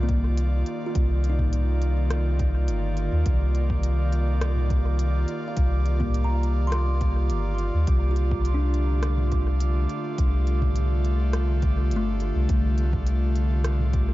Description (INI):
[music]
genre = ambient dub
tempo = 104 BPM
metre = 4/4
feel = straight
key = C dorian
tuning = A4 = 440 Hz
[part]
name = airy breathy pad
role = sustained chords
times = 0.0-14.1 s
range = D3 to D5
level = -31 LUFS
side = right 1 dB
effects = chorus
[part]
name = kalimba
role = arpeggios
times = 0.0-13.6 s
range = A3 to C6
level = -34 LUFS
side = left 1 dB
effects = dub echo
[part]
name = soft dub sub bass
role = bass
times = 0.0-14.1 s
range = G1 to Eb2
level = -22 LUFS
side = equal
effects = none
[part]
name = drifting glass-harmonics texture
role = texture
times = 0.0-14.1 s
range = G4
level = -38 LUFS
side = right 4 dB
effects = chorus, built-in reverb
[part]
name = electronic kick drum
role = drums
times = 0.1-14.1 s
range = none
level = -27 LUFS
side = equal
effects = none
[part]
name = organic electronic drum kit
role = drums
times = 0.1-14.1 s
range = hi-hat, rim click, toms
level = -36 LUFS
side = left 1 dB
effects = dub echo
[sound]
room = little or no reverb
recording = dark, warm production, nothing above 7.6 kHz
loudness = -21 LUFS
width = side -17 dB against mid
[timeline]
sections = 0.0-14.1 A section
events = none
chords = 0.0 Cm11; 7.9 Dm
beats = 0.38 | 0.95 1.53 2.11 2.69 | 3.26 3.84 4.42 4.99 | 5.57 6.15 6.72 7.30 | 7.88 8.45 9.03 9.61 | 10.19 10.76 11.34 11.92 | 12.49 13.07 13.65